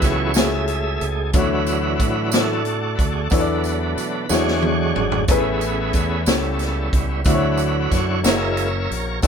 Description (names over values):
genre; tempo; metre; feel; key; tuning
slow gospel; 61 BPM (dotted quarters); 6/8; straight; unclear; A4 = 438 Hz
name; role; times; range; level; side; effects
warm baby grand piano; accompaniment; 0.0-9.3 s; A2 to D5; -24 LUFS; left 4 dB; none
bright tonewheel organ; sustained chords; 0.0-9.3 s; D3 to E5; -23 LUFS; right 2 dB; slow rotary speaker, overdrive
fingered electric bass with an envelope filter; bass; 0.0-9.3 s; F#1 to B2; -24 LUFS; right 1 dB; none
swinging big-band drum kit; drums; 0.0-9.3 s; hi-hat, kick drum, snare drum, toms; -21 LUFS; equal; none
tambourine; percussion; 0.0-9.3 s; none; -32 LUFS; right 7 dB; none
room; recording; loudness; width
light reverb; band playing live in one room; -17 LUFS; side -7 dB against mid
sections
0.0-9.3 A section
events
tonewheel organ solo 0.0-9.3; drum fill 4.3-5.3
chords
0.0 F#m11; 1.3 Dmaj9; 3.3 E7sus4; 4.3 E13; 5.3 Amaj9; 6.3 A7/C#; 7.3 Dmaj9; 8.2 F#7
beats
0.35 | 1.34 2.33 | 3.31 4.30 | 5.29 6.27 | 7.26 8.25 | 9.24